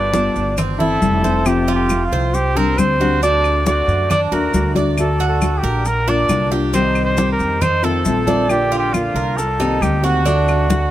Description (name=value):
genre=latin, Cuban son and guajira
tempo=136 BPM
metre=4/4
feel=straight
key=unclear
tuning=A4 = 438 Hz
part: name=warm trumpet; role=melody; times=0.0-10.9 s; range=F4 to D5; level=-20 LUFS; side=right 1 dB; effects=none
part: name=nylon-string guitar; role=accompaniment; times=0.0-10.9 s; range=C3 to G4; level=-21 LUFS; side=left 3 dB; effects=none
part: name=Cuban tres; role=arpeggios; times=0.0-10.9 s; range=B3 to D5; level=-23 LUFS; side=right 5 dB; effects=none
part: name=upright bass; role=bass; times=0.0-10.9 s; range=F1 to F#2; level=-20 LUFS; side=equal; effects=none
part: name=congas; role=percussion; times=0.1-10.9 s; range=none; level=-23 LUFS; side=left 2 dB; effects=none
part: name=maracas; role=percussion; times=0.1-10.9 s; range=none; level=-33 LUFS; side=left 4 dB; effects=none
part: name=claves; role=percussion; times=0.6-10.7 s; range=none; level=-31 LUFS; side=left 3 dB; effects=none
room=light reverb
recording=none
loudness=-14 LUFS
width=side -13 dB against mid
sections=0.0-10.9 A section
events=none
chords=0.0 G7; 0.6 C/G; 1.5 F; 2.3 Csus2; 3.2 D; 5.9 Bb; 6.7 Cm; 7.6 F7; 8.5 Bb; 9.4 Cm7; 10.3 D